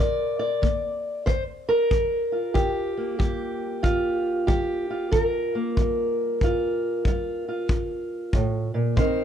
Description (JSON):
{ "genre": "acoustic country blues, solo or duo", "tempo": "94 BPM", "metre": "4/4", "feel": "swing 63% on 8ths", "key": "G minor", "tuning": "A4 = 440 Hz", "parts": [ { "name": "fingerpicked steel-string acoustic guitar", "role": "melody", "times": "0.0-9.2 s", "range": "G2 to D5", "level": "-24 LUFS", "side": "equal", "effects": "none" }, { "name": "kick drum", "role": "drums", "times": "0.6-9.2 s", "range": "none", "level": "-24 LUFS", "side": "equal", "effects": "none" } ], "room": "light reverb", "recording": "dark, warm production", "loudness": "-22 LUFS", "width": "side -9 dB against mid", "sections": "0.0-9.2 A section", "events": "none", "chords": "0.0 Gm7" }